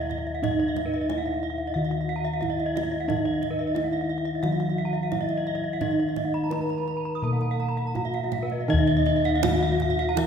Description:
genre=Balinese gamelan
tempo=81-91 BPM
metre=4/4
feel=straight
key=Eb pelog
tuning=A4 = 441 Hz
part: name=gamelan-type bronze metallophone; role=melody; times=0.0-10.3 s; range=Eb4 to Cb5-40c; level=-29 LUFS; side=right 2 dB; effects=none
part: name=gamelan-type bronze metallophone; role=arpeggios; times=0.0-10.3 s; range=Cb5-40c to Cb6-40c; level=-32 LUFS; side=left 4 dB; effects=none
part: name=gamelan-type bronze metallophone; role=arpeggios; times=0.0-10.1 s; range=Eb5 to Eb6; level=-31 LUFS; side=right 4 dB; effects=none
part: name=gamelan-type bossed gongs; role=bass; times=0.0-10.3 s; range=Eb2 to Fb4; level=-28 LUFS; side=left 1 dB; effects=none
part: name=kendang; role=percussion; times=0.1-10.3 s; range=none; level=-34 LUFS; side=right 5 dB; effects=none
part: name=gamelan-type bronze metallophone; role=accompaniment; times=3.1-10.3 s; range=Eb3 to Bb3-45c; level=-32 LUFS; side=left 1 dB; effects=none
room=wet concert hall reverb, RT60 2.1 s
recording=recorded in a church or concert hall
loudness=-23 LUFS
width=side -7 dB against mid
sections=0.0-8.7 A section; 8.7-10.3 B section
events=none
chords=none

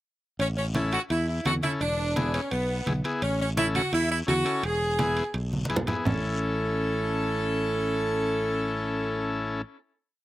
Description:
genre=latin, cumbia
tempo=170 BPM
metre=4/4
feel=straight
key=A major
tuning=A4 = 440 Hz
part: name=bright saxophone section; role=melody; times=0.4-9.6 s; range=B3 to A4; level=-28 LUFS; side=right 1 dB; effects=slapback echo
part: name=modern bright fingered electric bass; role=bass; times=0.4-9.6 s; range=E1 to E2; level=-30 LUFS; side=equal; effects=none
part: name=guiro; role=percussion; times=0.4-6.1 s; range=none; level=-44 LUFS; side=left 4 dB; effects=none
part: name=timbales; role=percussion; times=0.4-6.1 s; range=none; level=-36 LUFS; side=right 4 dB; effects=slapback echo
part: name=congas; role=percussion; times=0.6-6.1 s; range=none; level=-31 LUFS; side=right 1 dB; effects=none
part: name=combo organ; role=accompaniment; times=0.7-9.6 s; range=B3 to A4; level=-30 LUFS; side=left 2 dB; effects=slapback echo
room=little or no reverb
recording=recorded outdoors, with no room sound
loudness=-24 LUFS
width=side -15 dB against mid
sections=0.4-6.1 A section; 6.1-8.9 final chord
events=drum fill 5.5-6.1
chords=0.4 A; 1.8 E7; 3.2 A; 4.6 E; 6.1 A

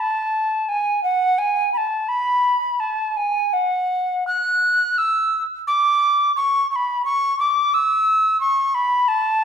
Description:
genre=classical, baroque-style fantasia for unaccompanied recorder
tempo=78-90 BPM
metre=4/4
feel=rubato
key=F# minor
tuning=A4 = 438 Hz
part: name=mellow hollow alto recorder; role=solo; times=0.0-9.4 s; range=F#5 to F#6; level=-17 LUFS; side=equal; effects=none
room=wet recital hall reverb, RT60 1.3 s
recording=recorded in a church or concert hall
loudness=-17 LUFS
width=side -7 dB against mid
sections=0.0-9.4 A section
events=none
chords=none

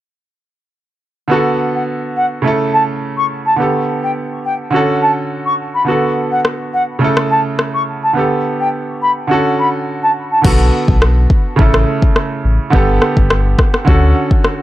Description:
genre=dancehall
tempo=105 BPM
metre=4/4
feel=straight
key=B minor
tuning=A4 = 439 Hz
part: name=clear baby grand piano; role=accompaniment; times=1.3-14.6 s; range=C#3 to A4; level=-16 LUFS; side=right 2 dB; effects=none
part: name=mellow wooden flute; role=melody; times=1.7-10.4 s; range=F#5 to C#6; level=-16 LUFS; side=equal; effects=tape echo
part: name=afro-pop drum kit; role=drums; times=6.4-14.6 s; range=crash cymbal, kick drum, rim click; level=-12 LUFS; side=equal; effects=none
part: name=sub bass with octave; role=bass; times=10.4-14.1 s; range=G1 to D2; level=-13 LUFS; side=equal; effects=none
room=small room ambience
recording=dry, gritty hardware recording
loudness=-12 LUFS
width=side -14 dB against mid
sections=1.3-10.4 A section; 10.4-14.6 B section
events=none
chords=1.3 Bm7; 2.4 A; 3.6 Gadd9; 4.7 Dmaj7; 5.9 Bm7; 7.0 A; 8.2 Gadd9; 9.3 Dmaj7; 10.4 Bm7; 11.6 A; 12.7 Gadd9; 13.9 Dmaj7

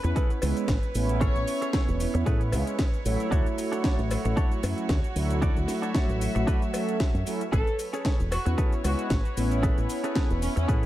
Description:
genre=nu-disco, nu disco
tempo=114 BPM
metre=4/4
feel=swing 55% on 16ths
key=A major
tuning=A4 = 441 Hz
part: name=warm studio violin section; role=melody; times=0.0-2.0, 7.5-10.6 s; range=C#4 to C#5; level=-35 LUFS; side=equal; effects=analog delay
part: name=mellow synth brass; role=accompaniment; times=0.0-10.9 s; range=F#3 to C#5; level=-31 LUFS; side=right 1 dB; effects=chorus, sidechain pumping, analog delay
part: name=warm chamber string section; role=sustained chords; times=0.0-10.9 s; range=F#4 to E5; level=-37 LUFS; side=right 3 dB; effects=sidechain pumping
part: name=direct-recorded clean electric guitar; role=riff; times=0.0-10.8 s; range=C#4 to D5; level=-36 LUFS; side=right 1 dB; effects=wide subtle chorus, analog delay
part: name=fingered electric bass with an envelope filter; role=bass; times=0.0-10.9 s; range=E1 to A2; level=-27 LUFS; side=equal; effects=sidechain pumping
part: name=house drum kit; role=drums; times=0.0-10.9 s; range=hi-hat, shaker, snare drum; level=-35 LUFS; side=equal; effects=analog delay
part: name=electronic kick drum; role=drums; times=0.2-10.8 s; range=none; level=-26 LUFS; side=equal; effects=none
part: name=cowbell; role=percussion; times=0.4-9.0 s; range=none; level=-36 LUFS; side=left 2 dB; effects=none
room=little or no reverb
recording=echo-heavy mix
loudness=-24 LUFS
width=side -14 dB against mid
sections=0.0-10.9 A section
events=none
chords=0.0 Amaj9; 3.3 Dmaj7; 7.5 Amaj9

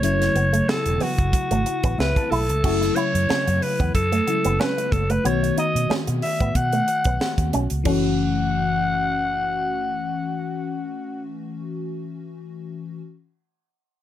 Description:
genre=polished 1980s jazz-funk pop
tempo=92 BPM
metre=4/4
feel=swing 54% on 16ths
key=F# minor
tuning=A4 = 440 Hz
part: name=raspy alto saxophone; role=melody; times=0.0-11.2 s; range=F#4 to F#5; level=-24 LUFS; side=equal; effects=none
part: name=FM electric piano with soft pad layer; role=accompaniment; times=0.0-13.0 s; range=C#3 to A5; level=-26 LUFS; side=left 4 dB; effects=lush chorus
part: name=vintage muted fingered electric bass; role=bass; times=0.0-11.9 s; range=E1 to B2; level=-25 LUFS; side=equal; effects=none
part: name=tight funk drum kit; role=drums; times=0.0-8.0 s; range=crash cymbal, hi-hat, kick drum, snare drum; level=-26 LUFS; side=right 1 dB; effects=gated reverb
part: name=electric guitar with an envelope filter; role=riff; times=0.2-8.1 s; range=A3 to F#4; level=-26 LUFS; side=right 4 dB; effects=analog chorus
part: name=congas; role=percussion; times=0.4-8.2 s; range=none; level=-34 LUFS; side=right 1 dB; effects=none
room=moderate studio ambience, RT60 0.5 s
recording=none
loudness=-19 LUFS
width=side -12 dB against mid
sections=0.0-2.6 A section; 2.6-7.9 B section; 7.9-10.5 C section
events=FM electric piano fill 1.7-2.6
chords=0.0 F#m7; 5.2 B7; 7.9 F#m7

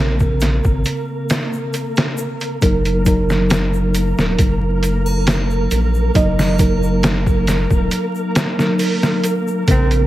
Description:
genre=trip hop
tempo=68 BPM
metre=4/4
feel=straight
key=unclear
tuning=A4 = 436 Hz
part: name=mellow tine electric piano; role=accompaniment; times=0.0-10.1 s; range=Db3 to Eb5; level=-20 LUFS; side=equal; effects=slow stereo tremolo, tape echo
part: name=round analog bass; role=bass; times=0.0-10.1 s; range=Eb1 to Bb1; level=-19 LUFS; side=equal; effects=none
part: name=flickering grainy texture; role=texture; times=0.0-10.1 s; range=Bb3 to Bb4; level=-24 LUFS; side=right 1 dB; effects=built-in reverb
part: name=trip hop sampler-style drum kit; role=drums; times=0.2-10.1 s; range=hi-hat, kick drum, snare drum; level=-18 LUFS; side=equal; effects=studio reverb
part: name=egg shaker and triangle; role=percussion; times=0.2-10.1 s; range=none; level=-36 LUFS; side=left 2 dB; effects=none
part: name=warm cello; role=melody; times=9.7-9.9 s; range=C4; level=-22 LUFS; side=equal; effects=none
room=light reverb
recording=vinyl crackle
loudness=-14 LUFS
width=side -15 dB against mid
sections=0.0-10.1 A section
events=none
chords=0.0 Bbmadd9; 2.6 Gb6

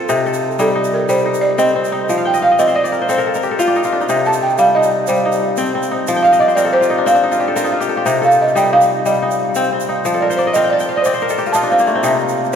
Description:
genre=west african traditional, West African string and xylophone music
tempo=121 BPM (dotted quarters)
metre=12/8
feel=straight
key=C dorian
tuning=A4 = 440 Hz
part: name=kora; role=arpeggios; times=0.0-12.6 s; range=C3 to A5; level=-16 LUFS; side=left 2 dB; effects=none
part: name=egg shaker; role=percussion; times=0.1-12.6 s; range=none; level=-32 LUFS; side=right 8 dB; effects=none
part: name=balafon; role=melody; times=0.6-12.6 s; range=A4 to A5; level=-15 LUFS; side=right 1 dB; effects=none
room=wet cathedral reverb, RT60 6.5 s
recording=recorded in a church or concert hall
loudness=-13 LUFS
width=side -8 dB against mid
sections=0.0-12.0 A section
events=balafon solo 0.0-12.0; kora fill 2.2-4.1, 6.1-8.1, 10.0-12.0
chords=0.1 Cm; 2.1 F5; 4.1 Cm; 6.1 F5; 8.1 Cm; 10.0 F5; 12.0 Cm

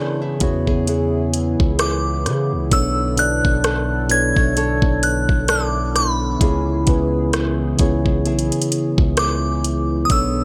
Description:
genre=contemporary R&B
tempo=65 BPM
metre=4/4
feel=swing 58% on 16ths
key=unclear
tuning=A4 = 440 Hz
part: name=mellow tine electric piano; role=accompaniment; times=0.0-10.4 s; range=B2 to D5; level=-24 LUFS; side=equal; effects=none
part: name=chorused pulse-width pad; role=sustained chords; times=0.0-10.4 s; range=D3 to A4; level=-31 LUFS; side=equal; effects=none
part: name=nylon-string guitar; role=arpeggios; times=0.0-10.4 s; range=C#3 to C#5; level=-30 LUFS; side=equal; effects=none
part: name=long sustained 808-style bass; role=bass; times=0.4-10.4 s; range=B1 to C#3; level=-26 LUFS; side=equal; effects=none
part: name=smooth R&B drum kit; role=drums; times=0.4-10.3 s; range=hi-hat, kick drum, rim click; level=-23 LUFS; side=equal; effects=none
part: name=glassy synth bell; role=melody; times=1.8-10.4 s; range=B5 to G#6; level=-24 LUFS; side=equal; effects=chorus
room=little or no reverb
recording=none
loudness=-19 LUFS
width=mono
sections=0.0-10.4 A section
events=none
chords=0.0 C#m7; 2.7 Bm9; 6.4 C#m7

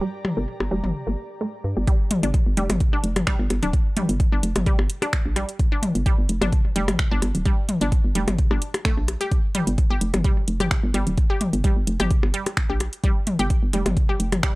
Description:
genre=minimal techno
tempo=129 BPM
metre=4/4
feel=swing 54% on 16ths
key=G minor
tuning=A4 = 440 Hz
part: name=resonant blip pluck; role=riff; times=0.0-14.5 s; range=G3 to G4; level=-29 LUFS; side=equal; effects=chorus, sidechain pumping, analog delay
part: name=granular cloud pad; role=texture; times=0.0-1.9 s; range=G4 to Bb5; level=-40 LUFS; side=right 1 dB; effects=built-in reverb, sidechain pumping
part: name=electronic toms and percussion blips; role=percussion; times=0.2-14.4 s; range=none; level=-26 LUFS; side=left 1 dB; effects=small room ambience, tape echo
part: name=hollow knocking FM bass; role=bass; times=0.4-14.4 s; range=D1 to G2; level=-24 LUFS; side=equal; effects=sidechain pumping
part: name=electronic kick drum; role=drums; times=1.9-14.5 s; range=none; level=-21 LUFS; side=equal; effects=small room ambience
part: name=garage drum kit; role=drums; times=1.9-14.5 s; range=finger snaps, hi-hat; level=-29 LUFS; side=right 1 dB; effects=small room ambience
room=little or no reverb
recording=dry, gritty hardware recording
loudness=-20 LUFS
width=side -22 dB against mid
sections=0.0-1.9 A section; 1.9-14.6 B section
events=drop 1.9-14.6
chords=0.0 Gm; 1.9 G5

